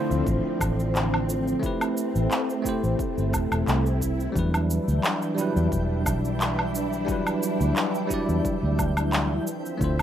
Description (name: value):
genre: sunset chillout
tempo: 88 BPM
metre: 4/4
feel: swing 54% on 16ths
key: E minor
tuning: A4 = 439 Hz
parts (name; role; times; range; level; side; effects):
- bell-like tine electric piano; accompaniment; 0.0-10.0 s; F#3 to D5; -28 LUFS; equal; auto-pan, ping-pong delay
- soft string machine; sustained chords; 0.0-10.0 s; D3 to E5; -29 LUFS; equal; ensemble chorus, vintage 12-bit sampler grit
- vintage muted fingered electric bass; bass; 0.1-10.0 s; E1 to E2; -25 LUFS; equal; none
- electronic cabasa, woodblock and handclaps; drums; 0.1-10.0 s; none; -29 LUFS; equal; none
- electronic kick drum; drums; 0.3-10.0 s; none; -32 LUFS; equal; none
- swell; sound effects; 3.5-4.4 s; none; -38 LUFS; right 3 dB; none
- twinkling granular texture; texture; 4.9-10.0 s; G5; -42 LUFS; right 5 dB; built-in reverb
room: light reverb, digital ambience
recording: rough home demo mix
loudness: -22 LUFS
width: side -10 dB against mid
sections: 0.0-10.0 A section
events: swell 3.5-4.4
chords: 0.0 Dm9; 1.6 Am9; 4.4 Em9; 9.5 Dm9